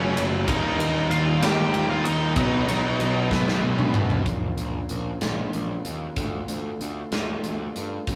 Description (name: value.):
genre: quiet-loud alternative rock.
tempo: 63 BPM (dotted quarters).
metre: 6/8.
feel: straight.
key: unclear.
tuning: A4 = 442 Hz.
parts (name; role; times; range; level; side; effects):
octave-fuzz lead guitar; melody; 0.0-3.3 s; Db4 to G5; -29 LUFS; equal; distortion.
tonewheel organ; sustained chords; 0.0-4.2 s; none; barely audible; none; none.
distorted electric guitar; riff; 0.0-4.2 s; Gb2 to Eb4; -32 LUFS; equal; overdrive.
fuzz guitar; riff; 0.0-4.3 s; B2 to Eb4; -29 LUFS; equal; distortion.
fuzz picked electric bass; bass; 0.0-8.2 s; Gb1 to G2; -32 LUFS; equal; overdrive.
big rock drum kit; drums; 0.2-8.2 s; hi-hat, kick drum, ride cymbal, snare drum, toms; -29 LUFS; equal; none.
electric guitar through a small old amp; arpeggios; 4.3-8.2 s; Gb2 to Gb4; -37 LUFS; equal; none.
room: wet studio ambience, RT60 0.5 s.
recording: rough rehearsal-room recording, tube saturation.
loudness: -24 LUFS.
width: mono.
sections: 0.0-4.3 A section; 4.3-8.2 B section.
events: drum fill 3.3-4.3.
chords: 0.5 Eb; 2.4 B; 4.3 Bbm; 6.2 Dm.